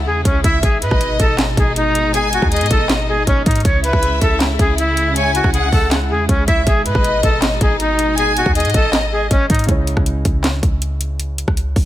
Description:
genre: hip hop, trap.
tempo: 159 BPM.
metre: 4/4.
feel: half-time.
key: C# minor.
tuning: A4 = 440 Hz.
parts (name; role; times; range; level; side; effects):
warm symphonic string section; sustained chords; 0.0-9.7 s; B2 to E4; -24 LUFS; equal; none.
clean 808-style bass; bass; 0.0-11.9 s; G#1 to G#2; -20 LUFS; equal; none.
breathy bright jazz flute; melody; 0.1-9.7 s; C#4 to C#5; -18 LUFS; equal; low-pass filter, ping-pong delay.
trap drum kit; drums; 0.3-11.8 s; handclaps, hi-hat, kick drum, rim click, snare drum; -17 LUFS; equal; none.
warm symphonic violin section; second line; 0.4-9.3 s; D#5 to G#5; -23 LUFS; left 2 dB; ping-pong delay.
felt-muted upright piano; accompaniment; 9.7-11.9 s; C#3 to C#5; -25 LUFS; right 1 dB; low-pass filter.
room: small room ambience.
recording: none.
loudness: -13 LUFS.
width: side -13 dB against mid.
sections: 0.0-9.7 A section; 9.7-11.9 B section.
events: none.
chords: 0.0 C#m; 0.6 G#m; 3.6 C#m; 6.7 G#m; 9.7 C#m.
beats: 0.25 | 0.63 1.01 1.38 1.76 | 2.14 2.52 2.89 3.27 | 3.65 4.03 4.40 4.78 | 5.16 5.54 5.91 6.29 | 6.67 7.04 7.42 7.80 | 8.18 8.55 8.93 9.31 | 9.69 10.06 10.44 10.82 | 11.20 11.57.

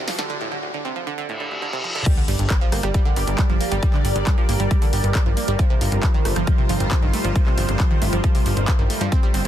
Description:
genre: uplifting trance.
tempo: 136 BPM.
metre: 4/4.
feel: straight.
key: G minor.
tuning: A4 = 441 Hz.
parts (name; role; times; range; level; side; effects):
lush unison pad; sustained chords; 0.0-9.5 s; G3 to Eb5; -27 LUFS; equal; chorus, phaser, sidechain pumping.
riser, reverse cymbal and sub drop; sound effects; 0.0-3.8 s; none; -30 LUFS; left 1 dB; none.
analog pluck; arpeggios; 0.1-9.5 s; D2 to C4; -26 LUFS; right 5 dB; chorus, phaser, sidechain pumping, dub echo.
punchy analog drum machine; drums; 0.1-9.5 s; crash cymbal, handclaps, hi-hat, rim click, snare drum; -30 LUFS; left 1 dB; none.
electronic kick drum; drums; 2.1-9.2 s; none; -18 LUFS; equal; overdrive.
plucky analog bass; bass; 2.3-9.5 s; G1 to G2; -22 LUFS; left 1 dB; sidechain pumping.
room: digital ambience.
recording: dense, heavily limited modern master, high-pass filter.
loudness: -18 LUFS.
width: side -11 dB against mid.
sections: 0.0-2.1 A section; 2.1-9.5 B section.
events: build-up 0.0-2.1; drum fill 0.0; riser 0.0; reverse cymbal 1.3-2.1; drop 2.1-9.5; impact 2.1-3.8.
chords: 0.0 Dsus4; 2.1 Gm; 5.6 Fsus4/G.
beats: | 0.30 0.74 1.18 1.62 | 2.06 2.50 2.94 3.38 | 3.83 4.27 4.71 5.15 | 5.59 6.03 6.47 6.92 | 7.36 7.80 8.24 8.68 | 9.12.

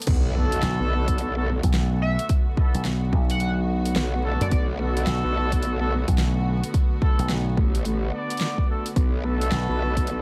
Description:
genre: glitch hop.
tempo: 108 BPM.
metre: 4/4.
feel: swing 63% on 16ths.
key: B minor.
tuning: A4 = 440 Hz.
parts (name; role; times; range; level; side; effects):
dark studio string section; sustained chords; 0.0-10.2 s; D3 to B4; -36 LUFS; equal; sidechain pumping.
pop drum kit; drums; 0.0-10.2 s; crash cymbal, hi-hat, rim click, snare drum; -34 LUFS; equal; none.
growl bass; bass; 0.1-10.2 s; A1 to B1; -27 LUFS; equal; chorus.
electronic kick drum; drums; 0.1-10.1 s; none; -24 LUFS; equal; none.
impact; sound effects; 0.1-2.3 s; none; -34 LUFS; equal; none.
warm horn section; stabs; 0.3-10.2 s; A3 to D5; -33 LUFS; equal; sidechain pumping, tape echo.
slap bass with an envelope filter; bass; 0.6-9.7 s; B1 to F#2; -26 LUFS; equal; none.
sync lead; melody; 2.0-4.6 s; D5 to F#5; -35 LUFS; equal; subtle chorus, tape echo.
room: digital ambience.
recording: vinyl crackle.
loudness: -23 LUFS.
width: mono.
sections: 0.1-10.2 A section.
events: drop 0.1-10.2; impact 0.1-2.3.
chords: 0.1 Bm7.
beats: | 0.07 0.63 1.18 1.74 | 2.29 2.85 3.41 3.96 | 4.52 5.07 5.63 6.18 | 6.74 7.29 7.85 8.41 | 8.96 9.52 10.07.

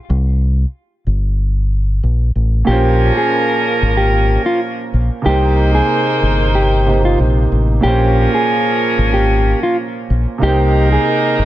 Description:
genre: hip hop.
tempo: 93 BPM.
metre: 4/4.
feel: swing 55% on 16ths.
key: Bb dorian.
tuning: A4 = 441 Hz.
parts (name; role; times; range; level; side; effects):
deep dub fingered electric bass; bass; 0.1-11.4 s; G1 to C2; -14 LUFS; equal; none.
warm concert grand piano; accompaniment; 2.6-11.4 s; Bb2 to G5; -19 LUFS; right 4 dB; cassette tape, high-pass filter, low-pass filter.
mellow electric guitar; melody; 2.7-11.4 s; F4 to Ab4; -18 LUFS; equal; high-pass filter, low-pass filter, ping-pong delay.
clear saxophone section; stabs; 2.7-11.4 s; F3 to C5; -19 LUFS; right 1 dB; high-pass filter, low-pass filter, ping-pong delay.
room: small room ambience.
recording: none.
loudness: -12 LUFS.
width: side -14 dB against mid.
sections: 0.0-2.7 A section; 2.7-11.4 B section.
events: break 0.0-2.7.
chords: 0.1 C5; 2.7 Bbmadd9; 5.3 Cm7; 7.8 Bbmadd9; 10.4 Cm7.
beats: | 0.10 0.74 1.39 2.03 | 2.68 3.32 3.97 4.61 | 5.26 5.90 6.55 7.19 | 7.84 8.48 9.13 9.78 | 10.42 11.06.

